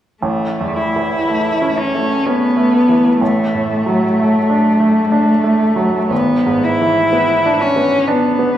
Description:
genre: classical, romantic duo for cello and grand piano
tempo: 52-65 BPM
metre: 3/4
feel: rubato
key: A major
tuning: A4 = 440 Hz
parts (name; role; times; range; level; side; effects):
- rich cello; melody; 0.2-8.6 s; A3 to E4; -14 LUFS; left 1 dB; none
- bright baby grand piano; accompaniment; 0.2-8.6 s; G#1 to D4; -17 LUFS; right 2 dB; none
room: wet recital hall reverb, RT60 1.7 s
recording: heard from further back in the room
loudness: -12 LUFS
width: side -11 dB against mid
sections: 0.2-8.6 A section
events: none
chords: 0.2 A; 3.2 D/A; 6.1 E7/G#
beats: | 0.23 1.29 2.26 | 3.21 4.17 5.11 | 6.11 7.13 8.08

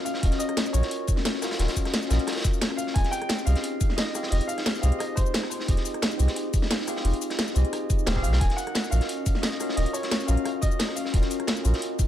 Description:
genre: liquid drum and bass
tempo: 176 BPM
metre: 4/4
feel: straight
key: unclear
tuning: A4 = 435 Hz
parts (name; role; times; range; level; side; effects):
- warm grand piano; melody; 0.0-6.1, 8.2-11.6 s; C5 to Ab5; -34 LUFS; right 1 dB; dub echo
- tine electric piano; accompaniment; 0.0-12.1 s; C4 to F5; -32 LUFS; equal; wide subtle chorus, dub echo
- glassy FM pad; sustained chords; 0.0-12.1 s; Db4 to Eb4; -34 LUFS; left 6 dB; ensemble chorus, built-in reverb, sidechain pumping
- crunchy breakbeat drum kit; drums; 0.1-12.1 s; hi-hat, snare drum; -34 LUFS; equal; high-pass filter on hats, high-pass filter on snare, high-pass filter on room
- drum and bass drum kit; drums; 0.1-12.1 s; hi-hat, rim click, shaker, snare drum; -30 LUFS; equal; none
- warm sub bass; bass; 0.2-11.7 s; Eb1 to C2; -22 LUFS; equal; tube saturation
- electronic kick drum; drums; 0.2-12.1 s; none; -24 LUFS; equal; none
room: little or no reverb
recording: none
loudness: -23 LUFS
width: side -11 dB against mid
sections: 0.0-12.1 A section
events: none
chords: 0.0 Ebm9; 3.0 Fm9; 8.4 Ebm9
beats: | 0.23 0.57 0.91 1.25 | 1.59 1.93 2.27 2.62 | 2.96 3.30 3.64 3.98 | 4.32 4.66 5.00 5.34 | 5.68 6.03 6.37 6.71 | 7.05 7.39 7.73 8.07 | 8.41 8.75 9.09 9.43 | 9.78 10.12 10.46 10.80 | 11.14 11.48 11.82

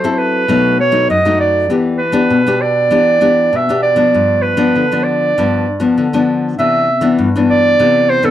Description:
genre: samba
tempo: 98 BPM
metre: 4/4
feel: straight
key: C major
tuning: A4 = 442 Hz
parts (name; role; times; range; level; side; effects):
- clear clarinet; melody; 0.0-8.3 s; A4 to E5; -13 LUFS; right 2 dB; none
- nylon-string guitar; accompaniment; 0.0-8.3 s; F#2 to A4; -14 LUFS; left 3 dB; none
room: studio ambience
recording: dry, close 1970s-style studio recording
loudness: -11 LUFS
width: side -12 dB against mid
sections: 0.0-8.3 A section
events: none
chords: 0.5 B7; 1.7 Em7; 4.1 G7; 6.6 Cmaj9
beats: 0.48 1.09 | 1.70 2.31 2.92 3.53 | 4.14 4.75 5.36 5.97 | 6.58 7.19 7.80

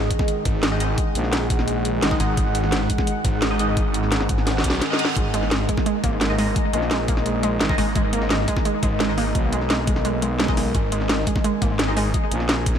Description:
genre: dark technical drum and bass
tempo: 172 BPM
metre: 4/4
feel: straight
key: unclear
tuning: A4 = 440 Hz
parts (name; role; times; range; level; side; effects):
- deep dark ambient pad; sustained chords; 0.0-12.8 s; D#3 to G#5; -26 LUFS; equal; chorus, built-in reverb, sidechain pumping
- band-passed chord stab; stabs; 0.0-12.3 s; G#3 to D#5; -32 LUFS; left 1 dB; phaser, wide subtle chorus, ping-pong delay
- snarling distorted saw bass; bass; 0.0-12.1 s; G#1; -24 LUFS; equal; distortion, overdrive, sidechain pumping
- drum and bass drum kit; drums; 0.1-12.8 s; hi-hat, snare drum; -25 LUFS; equal; none
- electronic kick drum; drums; 0.1-12.7 s; none; -23 LUFS; equal; overdrive
- growling FM bass; bass; 1.2-2.2, 4.6-12.8 s; G#1 to B1; -24 LUFS; equal; tube saturation
- reverse cymbal; sound effects; 4.6-5.2 s; none; -33 LUFS; right 5 dB; none
- warbly dusty pluck; arpeggios; 5.2-12.1 s; G#3 to A#3; -26 LUFS; right 2 dB; chorus, sidechain pumping, ping-pong delay
room: moderate huge ambient reverb, RT60 4.0 s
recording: dreamy mix soaked in reverb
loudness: -19 LUFS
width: side -8 dB against mid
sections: 0.0-12.8 A section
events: drum fill 4.5-5.2; reverse cymbal 4.6-5.2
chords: 0.0 G#5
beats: 0.28 0.63 | 0.98 1.33 1.68 2.02 | 2.37 2.72 3.07 3.42 | 3.77 4.12 4.47 4.82 | 5.16 5.51 5.86 6.21 | 6.56 6.91 7.26 7.61 | 7.96 8.30 8.65 9.00 | 9.35 9.70 10.05 10.40 | 10.75 11.10 11.44 11.79 | 12.14 12.49

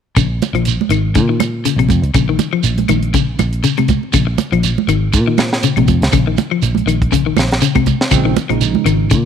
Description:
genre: afrobeat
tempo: 120 BPM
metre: 4/4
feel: swing 55% on 16ths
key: Bb minor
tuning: A4 = 440 Hz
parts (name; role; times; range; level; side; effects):
- electric guitar at the edge of break-up; arpeggios; 0.2-9.2 s; C3 to F3; -17 LUFS; left 8 dB; none
- fingered electric bass; bass; 0.2-9.3 s; Ab1 to Bb2; -17 LUFS; right 1 dB; none
- tight funk drum kit; drums; 0.2-9.2 s; hi-hat, kick drum, snare drum; -18 LUFS; right 1 dB; none
- claves; percussion; 0.2-9.0 s; none; -26 LUFS; left 12 dB; none
- shekere; percussion; 0.2-9.3 s; none; -22 LUFS; right 9 dB; none
- congas; percussion; 0.4-9.3 s; none; -19 LUFS; right 11 dB; none
- barky tine electric piano; accompaniment; 8.1-9.1 s; Db3 to Eb4; -20 LUFS; right 11 dB; medium stereo tremolo
room: light reverb, small room ambience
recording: 1960s-style stereo with parts hard left and right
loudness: -12 LUFS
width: side -8 dB against mid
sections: 0.2-9.3 A section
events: none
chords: 0.2 Bbm7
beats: | 0.16 0.66 1.15 1.65 | 2.15 2.65 3.15 3.64 | 4.14 4.64 5.14 5.64 | 6.13 6.63 7.13 7.63 | 8.13 8.62 9.12

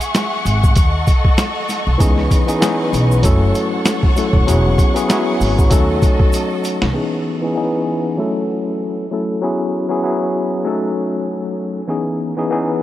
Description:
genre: hip hop, boom-bap hip-hop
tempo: 97 BPM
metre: 4/4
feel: swing 57% on 16ths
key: C# minor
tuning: A4 = 439 Hz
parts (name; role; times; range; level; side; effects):
- warm studio string section; sustained chords; 0.0-7.0 s; G#4 to C#6; -23 LUFS; left 1 dB; high-pass filter, low-pass filter
- boom bap sampler-style drum kit; drums; 0.0-6.9 s; hi-hat, kick drum, snare drum; -16 LUFS; equal; none
- tube shaker; percussion; 0.0-6.8 s; none; -36 LUFS; right 5 dB; none
- upright bass; bass; 0.5-6.9 s; D#1 to D#2; -17 LUFS; equal; none
- tine electric piano; accompaniment; 2.0-12.8 s; E3 to A4; -17 LUFS; left 1 dB; medium stereo tremolo, cassette tape, high-pass filter, low-pass filter
room: moderate huge ambient reverb, RT60 4.8 s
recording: dreamy mix soaked in reverb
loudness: -14 LUFS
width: side -14 dB against mid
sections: 0.0-6.9 A section; 6.9-12.8 B section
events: break 0.0-2.0; drum fill 6.3-6.9; filter sweep on tine electric piano 6.9-12.8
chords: 0.0 E69; 0.8 D#m7b5; 2.0 C#m9; 3.2 F#m7; 4.5 E69; 5.7 D#m7b5; 6.9 C#m9; 8.2 F#m7; 9.4 E69; 10.7 D#m7b5; 11.9 C#m9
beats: 0.14 0.76 1.38 | 2.00 2.62 3.24 3.86 | 4.47 5.09 5.71 6.33 | 6.95 7.57 8.19 8.80 | 9.42 10.04 10.66 11.28 | 11.90 12.52

